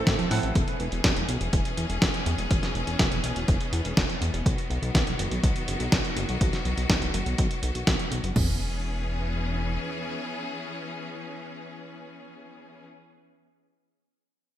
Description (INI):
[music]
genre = italo disco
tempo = 123 BPM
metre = 4/4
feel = straight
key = E major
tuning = A4 = 442 Hz
[part]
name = clear studio string section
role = sustained chords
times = 0.0-12.8 s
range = D#3 to A4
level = -33 LUFS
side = left 2 dB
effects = none
[part]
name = bell-like tine electric piano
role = stabs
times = 0.0-0.5 s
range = C4 to F#5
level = -34 LUFS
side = right 3 dB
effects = medium stereo tremolo, digital delay
[part]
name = chorused synth bass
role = bass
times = 0.0-9.8 s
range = E1 to A2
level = -30 LUFS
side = equal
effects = digital delay
[part]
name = dusty soul sampler-style drum kit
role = drums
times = 0.1-8.3 s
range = congas, hi-hat, snare drum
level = -28 LUFS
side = equal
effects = gated reverb
[part]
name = house drum kit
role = drums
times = 0.1-8.5 s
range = crash cymbal, kick drum, toms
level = -27 LUFS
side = equal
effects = overdrive
[sound]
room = light reverb, digital ambience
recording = bright 1980s-style digital production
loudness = -24 LUFS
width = side -12 dB against mid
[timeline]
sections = 0.0-8.4 A section; 8.4-12.3 B section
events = none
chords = 0.0 Am; 0.6 E6; 4.5 B; 8.4 E6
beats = 0.07 | 0.56 1.04 1.53 2.02 | 2.51 2.99 3.48 3.97 | 4.46 4.95 5.43 5.92 | 6.41 6.90 7.38 7.87 | 8.36 8.85 9.34 9.82 | 10.31 10.80 11.29 11.77